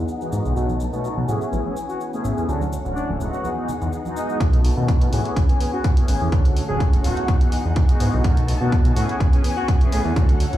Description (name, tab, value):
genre	filtered disco house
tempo	125 BPM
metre	4/4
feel	swing 53% on 16ths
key	unclear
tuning	A4 = 438 Hz
part	dark studio string section	sustained chords	0.0-10.6 s	D3 to A5	-32 LUFS	left 2 dB	sidechain pumping, low-pass filter
part	direct-recorded clean electric guitar	riff	0.0-10.6 s	E3 to A4	-30 LUFS	left 1 dB	vintage 12-bit sampler grit, sidechain pumping, low-pass filter
part	fat analog bass	bass	0.0-10.6 s	D1 to B2	-22 LUFS	equal	tube saturation, sidechain pumping, low-pass filter
part	electronic shaker and hi-hat	drums	0.1-10.6 s	none	-38 LUFS	left 1 dB	none
part	mellow synth brass	accompaniment	0.2-10.6 s	D3 to G#4	-28 LUFS	equal	chorus, phaser, sidechain pumping, low-pass filter
part	egg shaker and congas	percussion	0.6-4.4 s	none	-33 LUFS	right 2 dB	sidechain pumping on perc, low-pass filter on perc
part	brilliant horn section	melody	1.3-9.7 s	D4 to G#4	-30 LUFS	equal	sidechain pumping, low-pass filter, digital delay
part	electronic kick drum	drums	4.4-10.3 s	none	-17 LUFS	equal	none
room	digital ambience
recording	played on a big sound system in a bare room, large studio reverb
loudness	-18 LUFS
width	side -13 dB against mid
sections	0.0-4.4 A section; 4.4-10.6 B section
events	filter sweep 0.0-4.4, 4.4-10.6; build-up 4.4-10.6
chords	0.0 Emaj9; 0.6 B7; 1.3 Amaj9; 2.5 Dmaj7; 3.4 Emaj9; 4.4 B7; 5.1 Amaj9; 6.3 Dmaj7; 7.3 Emaj9; 8.2 B7; 9.0 Amaj9